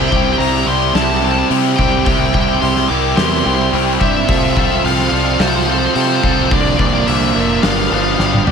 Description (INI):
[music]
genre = post-rock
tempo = 108 BPM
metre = 4/4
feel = straight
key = C mixolydian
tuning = A4 = 440 Hz
[part]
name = nasal lead guitar with a parked wah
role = melody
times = 0.0-8.4 s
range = C5 to D6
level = -20 LUFS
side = equal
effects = overdrive, slapback echo
[part]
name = analog string pad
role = sustained chords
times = 0.0-8.5 s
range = F4 to C6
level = -30 LUFS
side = left 1 dB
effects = none
[part]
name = twangy electric guitar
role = arpeggios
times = 0.0-8.5 s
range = G2 to A4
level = -25 LUFS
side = left 6 dB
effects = none
[part]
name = vibraphone with medium hard mallets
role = arpeggios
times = 0.0-8.5 s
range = Bb4 to E5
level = -26 LUFS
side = right 5 dB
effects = slapback echo
[part]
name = crunchy overdriven guitar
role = riff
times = 0.0-8.5 s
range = G2 to A4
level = -19 LUFS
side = right 11 dB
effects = spring reverb
[part]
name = tight distorted guitar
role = riff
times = 0.0-8.5 s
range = G2 to A4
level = -19 LUFS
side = left 13 dB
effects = distortion
[part]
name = growling fingered electric bass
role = bass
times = 0.0-8.5 s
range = F1 to C3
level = -20 LUFS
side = equal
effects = overdrive
[part]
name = oversized low-tuned drum kit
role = drums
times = 0.1-8.5 s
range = hi-hat, kick drum, snare drum, toms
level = -19 LUFS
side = left 1 dB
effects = none
[sound]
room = moderate large studio reverb, RT60 0.9 s, small room ambience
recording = none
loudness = -12 LUFS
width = side -6 dB against mid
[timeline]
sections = 0.0-8.5 A section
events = drum fill 8.2-8.5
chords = 0.0 C; 4.3 F/C; 6.5 Bbadd9/C; 7.6 G7